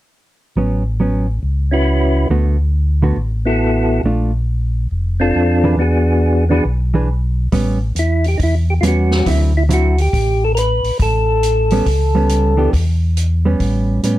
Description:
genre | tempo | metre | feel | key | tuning
soul jazz organ trio | 138 BPM | 4/4 | swing 65% on 8ths | A major, A mixolydian from 7.5 s | A4 = 439 Hz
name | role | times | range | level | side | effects
hollow-body jazz guitar | accompaniment | 0.6-14.2 s | D3 to B4 | -18 LUFS | right 2 dB | none
mellow tonewheel organ | bass | 0.6-14.2 s | F1 to A2 | -16 LUFS | equal | overdrive, chorus vibrato, slow rotary speaker
percussive tonewheel organ | melody | 1.7-12.7 s | B3 to B4 | -17 LUFS | equal | slow rotary speaker
open jazz drum kit | drums | 7.5-14.2 s | hi-hat, kick drum, snare drum | -23 LUFS | equal | none
room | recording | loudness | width
light reverb | dark, warm production | -13 LUFS | side -15 dB against mid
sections
0.6-7.5 A section; 7.5-14.2 B section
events
none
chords
0.6 A69; 2.3 D6; 4.0 Bbmaj7; 5.8 E7; 7.5 A9; 9.3 D9; 11.0 A9; 12.7 Em; 13.6 A9

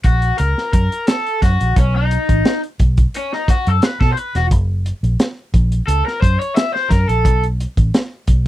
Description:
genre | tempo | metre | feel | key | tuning
funk | 88 BPM | 4/4 | straight | F# mixolydian | A4 = 440 Hz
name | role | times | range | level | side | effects
raw garage guitar | accompaniment | 0.0-7.4 s | C#4 to E5 | -19 LUFS | left 2 dB | overdrive, tube saturation
vintage muted fingered electric bass | bass | 0.0-8.5 s | E1 to B2 | -16 LUFS | equal | none
crunchy breakbeat drum kit | drums | 0.0-8.4 s | hi-hat, kick drum, snare drum | -16 LUFS | equal | none
room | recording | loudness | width
little or no reverb | dry, close 1970s-style studio recording | -14 LUFS | side -14 dB against mid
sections
0.0-8.5 A section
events
overdriven electric guitar solo 0.0-8.5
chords
0.0 F#; 1.8 B7; 4.5 F#; 7.2 B7(no3)

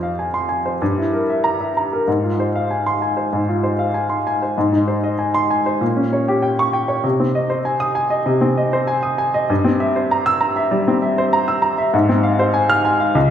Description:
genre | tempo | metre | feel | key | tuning
classical, virtuoso piano study | 97 BPM | 4/4 | rubato | F minor | A4 = 440 Hz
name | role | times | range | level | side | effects
warm baby grand piano | solo | 0.0-13.3 s | Db2 to F6 | -16 LUFS | equal | none
room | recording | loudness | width
wet recital hall reverb, RT60 1.7 s | heard from further back in the room | -16 LUFS | side -9 dB against mid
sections
0.0-13.3 A section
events
none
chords
0.0 Fm; 0.8 Edim/G; 2.1 Fm/Ab; 4.6 Ab; 5.8 Gdim/Bb; 7.0 Ab/C; 9.5 C7/G; 11.9 Fm/Ab

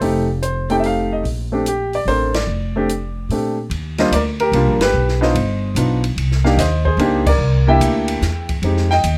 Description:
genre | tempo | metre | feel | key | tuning
jazz piano trio | 146 BPM | 3/4 | swing 66% on 8ths | Bb major, Eb major from 3.7 s | A4 = 442 Hz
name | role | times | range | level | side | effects
clear concert grand piano | melody | 0.0-9.2 s | G3 to G5 | -20 LUFS | equal | none
upright bass | bass | 0.0-9.2 s | F1 to Bb2 | -22 LUFS | equal | none
open jazz drum kit | drums | 0.0-9.2 s | crash cymbal, hi-hat, kick drum, ride cymbal, snare drum | -28 LUFS | equal | none
room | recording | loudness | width
light reverb | none | -18 LUFS | mono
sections
0.0-3.7 A section; 3.7-9.2 B section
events
band accent 2.3, 4.7, 7.2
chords
0.0 F7; 1.2 Bbmaj13; 3.7 Ebmaj9; 4.9 G7b13; 6.2 Cm9; 7.4 C7; 8.6 Fm9

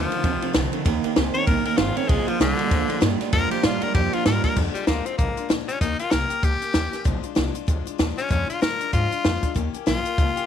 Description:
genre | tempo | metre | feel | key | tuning
rockabilly | 193 BPM | 4/4 | swing 59% on 8ths | Bb mixolydian | A4 = 440 Hz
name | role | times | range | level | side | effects
raspy tenor saxophone | melody | 0.0-10.5 s | D3 to Db5 | -26 LUFS | left 4 dB | none
picked steel-string acoustic guitar | accompaniment | 0.0-10.5 s | F2 to G4 | -31 LUFS | left 14 dB | none
electric guitar through a small old amp | riff | 0.0-4.6 s | F2 to C4 | -26 LUFS | right 14 dB | spring reverb
upright bass | bass | 0.0-10.4 s | G1 to Bb2 | -27 LUFS | equal | none
compact cocktail drum kit | drums | 0.1-10.4 s | crash cymbal, hi-hat, kick drum, ride cymbal, snare drum | -23 LUFS | equal | none
room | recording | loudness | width
light reverb, small room ambience | 1960s-style stereo with parts hard left and right | -20 LUFS | side -9 dB against mid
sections
0.0-4.6 A section; 4.6-10.5 B section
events
tenor saxophone solo 0.0-4.6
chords
0.0 F7; 0.9 Eb7; 2.1 Bb7; 5.8 Eb7; 7.1 Bb7; 9.6 Eb7

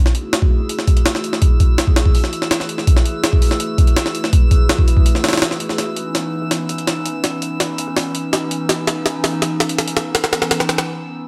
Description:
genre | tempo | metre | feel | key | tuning
drum and bass, jungle | 165 BPM | 4/4 | straight | F# minor | A4 = 440 Hz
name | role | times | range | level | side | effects
warbly tape-like pad | sustained chords | 0.0-11.2 s | E3 to G#4 | -27 LUFS | equal | chorus, built-in reverb
long sustained 808-style bass | bass | 0.0-10.9 s | none | barely audible | none | none
drifting glass-harmonics texture | texture | 0.3-10.9 s | E3 to E6 | -31 LUFS | equal | chorus, built-in reverb
jungle sampler-style drum kit | drums | 0.1-10.9 s | hi-hat, kick drum, snare drum | -17 LUFS | equal | none
room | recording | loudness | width
light reverb | none | -17 LUFS | mono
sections
0.0-11.3 A section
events
build-up 0.0-11.3; drum fill 5.8-10.9; break 10.9-11.3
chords
0.0 F#m9; 5.8 C#m9

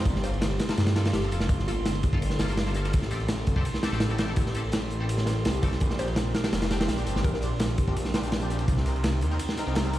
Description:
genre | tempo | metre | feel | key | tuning
drum and bass, jungle | 167 BPM | 4/4 | straight | G minor | A4 = 439 Hz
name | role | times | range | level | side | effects
warbly tape-like pad | sustained chords | 0.0-10.0 s | Bb3 to Bb4 | -36 LUFS | equal | chorus, built-in reverb
band-passed chord stab | stabs | 0.0-10.0 s | Bb3 to Bb4 | -38 LUFS | left 2 dB | phaser, ensemble chorus, cassette tape, dub echo
detuned saw bass | bass | 0.0-10.0 s | F1 to G2 | -28 LUFS | equal | none
drifting glass-harmonics texture | texture | 0.0-10.0 s | C6 | -43 LUFS | right 7 dB | chorus, built-in reverb
crunchy breakbeat drum kit | drums | 0.1-10.0 s | kick drum, ride cymbal, snare drum | -27 LUFS | equal | none
crunchy breakbeat drum kit | drums | 0.1-10.0 s | hi-hat, snare drum | -45 LUFS | left 2 dB | high-pass filter on hats, high-pass filter on snare, high-pass filter on room
hollow square pluck | melody | 0.2-2.2, 6.0-7.4 s | F4 to C5 | -38 LUFS | equal | chorus, dub echo
room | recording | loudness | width
studio ambience | played on a big sound system in a bare room, large studio reverb, vinyl crackle | -24 LUFS | side -14 dB against mid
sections
0.0-10.0 A section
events
none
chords
0.1 Gm9; 2.9 Am7; 5.8 Bb69; 8.7 Cm7

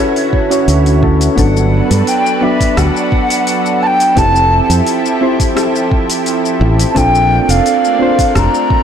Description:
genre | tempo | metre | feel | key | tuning
sunset chillout | 86 BPM | 4/4 | straight | unclear | A4 = 441 Hz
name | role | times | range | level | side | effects
breathy mellow wooden flute | melody | 0.0-8.8 s | C#5 to Bb5 | -15 LUFS | equal | ping-pong delay
soft electric-piano-like synth keys | accompaniment | 0.0-8.8 s | F#3 to D5 | -15 LUFS | moving between left 3 dB and right 6 dB | chorus, auto-pan, ping-pong delay
lush unison pad | sustained chords | 0.0-8.8 s | D3 to B4 | -20 LUFS | equal | chorus
deep house drum kit | drums | 0.2-8.7 s | hi-hat, rim click, shaker | -22 LUFS | left 2 dB | overdrive
electronic kick drum | drums | 0.3-8.8 s | none | -15 LUFS | equal | none
fretless electric bass | bass | 0.7-8.5 s | F1 to G2 | -12 LUFS | equal | tube saturation
room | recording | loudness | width
moderate plate reverb, RT60 2.5 s | blown-out, overdriven recording, overdrive | -10 LUFS | side -8 dB against mid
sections
0.0-1.4 A section; 1.4-8.8 B section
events
none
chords
0.0 Dmaj9; 1.4 Gmaj9; 4.2 Fmaj9; 7.0 Bbmaj9

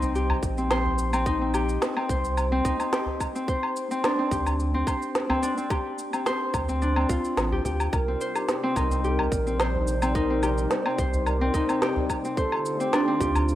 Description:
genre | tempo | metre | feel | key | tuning
organic downtempo | 108 BPM | 4/4 | swing 53% on 16ths | C dorian | A4 = 438 Hz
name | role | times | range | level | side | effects
Celtic harp | arpeggios | 0.0-13.6 s | C4 to C5 | -26 LUFS | left 1 dB | digital delay
warm sub bass | bass | 0.0-13.6 s | A1 to D2 | -27 LUFS | equal | sidechain pumping
electronic shaker, woodblock and snare drum | drums | 0.0-13.6 s | none | -30 LUFS | equal | none
udu | percussion | 0.0-13.5 s | none | -34 LUFS | right 1 dB | none
electronic kick drum | drums | 0.4-13.3 s | none | -29 LUFS | equal | none
reedy bass bansuri | melody | 7.9-13.6 s | F4 to D5 | -31 LUFS | right 2 dB | tape echo
warm analog pad | sustained chords | 7.9-13.6 s | C3 to D5 | -36 LUFS | equal | chorus, sidechain pumping
room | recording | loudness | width
moderate lush hall reverb, RT60 2.4 s | rough home demo mix | -23 LUFS | side -13 dB against mid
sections
0.0-13.6 A section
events
none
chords
0.0 Cm7; 3.5 Dm7; 7.9 Cm9; 12.4 Dm7

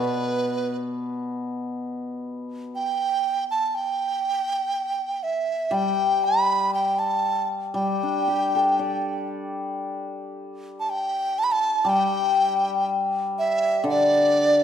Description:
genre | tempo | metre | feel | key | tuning
chinese traditional | 60 BPM | 4/4 | rubato | G gong mode | A4 = 438 Hz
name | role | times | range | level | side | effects
mellow hollow large dizi | melody | 0.0-14.6 s | B4 to B5 | -22 LUFS | right 2 dB | none
hammered dulcimer | accompaniment | 0.0-14.6 s | B2 to D5 | -25 LUFS | left 4 dB | none
room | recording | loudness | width
moderate scoring stage reverb, RT60 1.7 s | minimal, uncompressed stereo recording | -22 LUFS | side -9 dB against mid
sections
0.0-9.8 A section; 9.8-14.6 B section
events
none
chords
none

